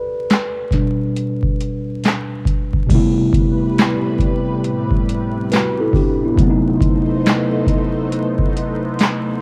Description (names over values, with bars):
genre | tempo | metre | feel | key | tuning
lo-fi hip hop | 69 BPM | 4/4 | swing 66% on 16ths | unclear | A4 = 438 Hz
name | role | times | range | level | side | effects
mellow tine electric piano | accompaniment | 0.0-9.4 s | B2 to D5 | -21 LUFS | equal | none
booming analog drum machine | drums | 0.3-9.3 s | crash cymbal, handclaps, hi-hat, kick drum, snare drum | -20 LUFS | equal | none
lush unison pad | sustained chords | 3.1-9.4 s | A2 to C5 | -26 LUFS | equal | chorus, phaser
room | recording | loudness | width
light reverb, digital ambience | home recording on cassette, vinyl crackle | -17 LUFS | mono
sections
0.0-2.9 A section; 2.9-9.4 B section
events
tine electric piano solo 0.0-2.9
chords
0.0 Bm7; 2.9 Am9; 6.4 B7b9